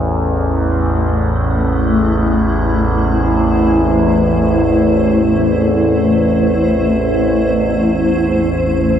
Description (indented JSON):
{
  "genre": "dark ambient drone",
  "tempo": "free time",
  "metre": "none",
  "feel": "none",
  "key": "A minor",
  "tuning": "A4 = 440 Hz",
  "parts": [
    { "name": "granular cloud pad", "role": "sustained chords", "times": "0.6-9.0 s", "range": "A3 to C5", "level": "-15 LUFS", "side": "equal", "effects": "built-in reverb" },
    { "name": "overtone-sweeping drone", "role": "drone", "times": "0.0-9.0 s", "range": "A1 to E2", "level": "-14 LUFS", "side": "equal", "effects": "chorus, built-in reverb" }
  ],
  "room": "wet huge ambient reverb, RT60 7.8 s",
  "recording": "none",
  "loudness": "-12 LUFS",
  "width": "side -9 dB against mid",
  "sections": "0.0-7.8 A section; 7.8-9.0 B section",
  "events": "none",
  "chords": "0.0 Am",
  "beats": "free time"
}